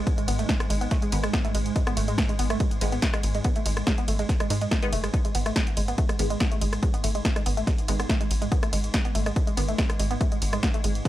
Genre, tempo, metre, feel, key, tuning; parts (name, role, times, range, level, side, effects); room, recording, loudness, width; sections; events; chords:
driving peak-time techno; 142 BPM; 4/4; straight; G# phrygian; A4 = 438 Hz
tight sequencer bass; bass; 0.0-11.0 s; F#1 to G#2; -27 LUFS; equal; sidechain pumping
swarming drone; drone; 0.0-11.1 s; G#2 to G#3; -34 LUFS; right 1 dB; built-in reverb, sidechain pumping
electronic kick drum; drums; 0.1-11.1 s; -26 LUFS; equal
punchy analog drum machine; drums; 0.1-11.1 s; hi-hat, ride cymbal, rim click, snare drum; -30 LUFS; equal; sidechain pumping on hats, sidechain pumping on cymbals
woody wave-folded pluck; riff; 0.2-11.1 s; G#3 to B3; -31 LUFS; right 2 dB; wide subtle chorus, sidechain pumping, tape echo
filtered dub chord stab; stabs; 1.1-9.7 s; D#3 to B3; -36 LUFS; left 1 dB; phaser, wide subtle chorus, sidechain pumping, tape echo
little or no reverb; dry, gritty hardware recording; -22 LUFS; side -14 dB against mid
0.0-11.1 A section
0.0 G#m